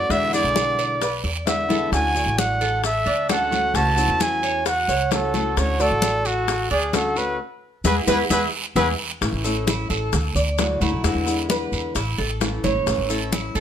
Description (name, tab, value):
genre	latin, Cuban son and guajira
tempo	132 BPM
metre	4/4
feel	straight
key	A major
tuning	A4 = 435 Hz
part	breathy trumpet	melody	0.0-8.9 s	F#4 to A5	-22 LUFS	right 1 dB	plate reverb
part	flamenco guitar	accompaniment	0.0-13.6 s	B2 to F#4	-27 LUFS	left 2 dB	none
part	Cuban tres	arpeggios	0.0-13.6 s	C#4 to D5	-26 LUFS	right 2 dB	none
part	upright bass	bass	0.0-13.6 s	F#1 to E2	-26 LUFS	equal	none
part	bongos	percussion	0.1-13.6 s	none	-29 LUFS	left 7 dB	none
part	congas	percussion	0.1-13.6 s	none	-28 LUFS	left 2 dB	none
part	guiro	percussion	0.1-13.6 s	none	-32 LUFS	right 6 dB	none
part	maracas	percussion	0.1-13.6 s	none	-33 LUFS	left 7 dB	none
room	light reverb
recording	none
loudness	-19 LUFS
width	side -9 dB against mid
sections	0.0-9.2 A section; 9.2-13.6 B section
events	band accent 7.4-9.2; drum fill 8.3-9.2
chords	0.1 E7; 1.9 Dmaj7; 3.7 A6/C#; 5.6 Dmaj7; 7.4 E; 9.2 A; 10.1 Dadd9; 11.0 E7; 12.0 A